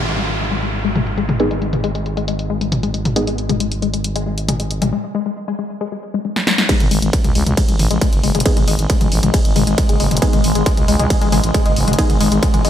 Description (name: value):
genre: driving peak-time techno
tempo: 136 BPM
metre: 4/4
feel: straight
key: G# phrygian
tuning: A4 = 440 Hz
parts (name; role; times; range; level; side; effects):
- growling FM bass; bass; 0.0-12.7 s; F#1 to C#2; -21 LUFS; equal; sidechain pumping
- downlifter; sound effects; 0.0-3.2 s; none; -25 LUFS; right 1 dB; none
- punchy analog drum machine; drums; 0.1-12.7 s; hi-hat, ride cymbal, snare drum, toms; -21 LUFS; equal; overdrive, sidechain pumping on hats, low-pass filter on hats, sidechain pumping on toms, low-pass filter on toms, sidechain pumping on cymbals, low-pass filter on cymbals, low-pass filter on snare, gated reverb
- tight sequenced synth; riff; 0.2-12.7 s; G#3; -22 LUFS; left 6 dB; chorus, sidechain pumping, digital delay
- filtered dub chord stab; stabs; 1.4-3.3, 6.7-12.1 s; B3 to G#4; -23 LUFS; right 1 dB; phaser, sidechain pumping, ping-pong delay
- swarming drone; drone; 8.7-12.7 s; G#2 to G#3; -23 LUFS; equal; built-in reverb, phaser, sidechain pumping
- electronic kick drum; drums; 6.7-12.5 s; none; -16 LUFS; right 1 dB; distortion
room: light reverb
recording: bright 1980s-style digital production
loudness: -15 LUFS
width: side -10 dB against mid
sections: 0.0-6.7 A section; 6.7-12.7 B section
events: filter sweep on drum 0.0-6.7; filter sweep on synth arpeggio sound 0.0-6.7; drum fill 6.4-6.7; drop 6.7-12.7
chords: 0.0 N.C.; 6.7 G#m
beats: 0.07 0.51 0.96 | 1.40 1.84 2.28 2.72 | 3.16 3.60 4.04 4.49 | 4.93 5.37 5.81 6.25 | 6.69 7.13 7.57 8.01 | 8.46 8.90 9.34 9.78 | 10.22 10.66 11.10 11.54 | 11.98 12.43